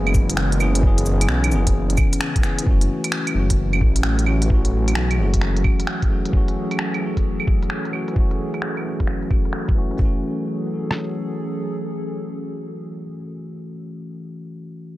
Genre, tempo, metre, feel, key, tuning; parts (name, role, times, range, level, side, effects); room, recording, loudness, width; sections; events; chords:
future garage; 131 BPM; 4/4; swing 66% on 16ths; F# minor; A4 = 440 Hz
bell-like tine electric piano; accompaniment; 0.0-15.0 s; E3 to G#4; -27 LUFS; left 2 dB; vintage 12-bit sampler grit, sidechain pumping, low-pass filter, tape echo
warbly tape-like pad; sustained chords; 0.0-13.3 s; C#3 to A4; -30 LUFS; right 2 dB; chorus, built-in reverb, sidechain pumping
swelling detuned saw bass; bass; 0.0-5.6 s; F#1 to B1; -20 LUFS; equal; sidechain pumping
lo-fi sampler-style drum kit; drums; 0.1-11.0 s; kick drum, rim click; -19 LUFS; equal
organic electronic drum kit; drums; 0.1-10.0 s; cabasa, claves, finger snaps, hi-hat; -26 LUFS; right 2 dB; overdrive, low-pass filter on hats, low-pass filter on perc, low-pass filter on snare, low-pass filter on room
light reverb, digital ambience; -18 LUFS; side -16 dB against mid
0.0-2.7 A section; 2.7-10.0 B section; 10.0-13.7 C section
filter sweep on drum 2.7-10.0; filter sweep on tine electric piano 2.7-10.0
0.0 C#m7/F#; 2.7 F#m7